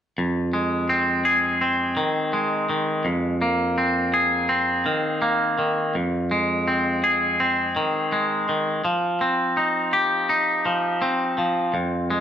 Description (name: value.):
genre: rock.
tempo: 83 BPM.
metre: 4/4.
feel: straight.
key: F minor.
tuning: A4 = 440 Hz.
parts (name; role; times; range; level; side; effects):
twangy electric guitar; arpeggios; 0.2-12.2 s; F2 to Ab4; -20 LUFS; equal; none.
room: wet stone room reverb, RT60 1.0 s.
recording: band playing live in one room.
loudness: -20 LUFS.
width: side -9 dB against mid.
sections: 0.2-12.2 A section.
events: none.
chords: 0.2 Fm7; 3.1 Abadd9/F; 5.9 Fm7; 8.8 Cm/F.